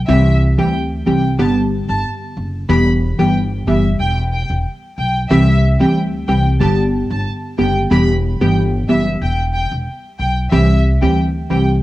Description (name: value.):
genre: dancehall.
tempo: 92 BPM.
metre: 4/4.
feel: straight.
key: E minor.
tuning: A4 = 441 Hz.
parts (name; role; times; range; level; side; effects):
upright bass; bass; 0.0-11.8 s; E1 to D2; -17 LUFS; equal; none.
rich studio violin section; melody; 0.1-11.6 s; E5 to B5; -22 LUFS; equal; plate reverb, analog delay.
glassy wavetable pluck; accompaniment; 0.1-11.7 s; D3 to G4; -16 LUFS; equal; chorus, plate reverb.
room: moderate booth ambience, RT60 0.2 s.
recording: home recording on cassette.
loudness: -13 LUFS.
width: side -16 dB against mid.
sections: 0.0-11.8 A section.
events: none.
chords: 0.1 C; 1.4 G; 2.7 Em; 5.3 C; 6.6 G; 7.9 Em; 10.5 C.